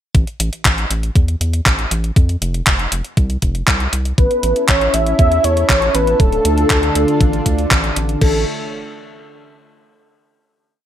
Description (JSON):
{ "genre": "italo disco", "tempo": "119 BPM", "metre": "4/4", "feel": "straight", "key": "unclear", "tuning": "A4 = 440 Hz", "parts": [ { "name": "round analog bass", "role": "bass", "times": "0.1-8.4 s", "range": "D1 to F2", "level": "-19 LUFS", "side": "equal", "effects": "none" }, { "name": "clean 12-bit digital drum machine", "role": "drums", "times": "0.1-8.3 s", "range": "crash cymbal, handclaps, hi-hat", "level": "-18 LUFS", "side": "equal", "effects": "overdrive, small room ambience, gated reverb" }, { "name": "electronic kick drum", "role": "drums", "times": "0.1-8.3 s", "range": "none", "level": "-14 LUFS", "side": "equal", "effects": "overdrive, small room ambience" }, { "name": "wide unison lead", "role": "melody", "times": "4.2-8.4 s", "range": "A4 to E5", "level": "-17 LUFS", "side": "equal", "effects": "ping-pong delay" }, { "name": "lush unison pad", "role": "sustained chords", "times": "4.2-8.5 s", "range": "D3 to E5", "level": "-22 LUFS", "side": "right 1 dB", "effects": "chorus" } ], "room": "light reverb", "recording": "none", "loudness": "-13 LUFS", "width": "side -11 dB against mid", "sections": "0.1-8.2 verse; 8.2-10.2 final chord", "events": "none", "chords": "0.1 A5; 2.2 F5; 4.2 A; 6.2 Dm; 8.2 A" }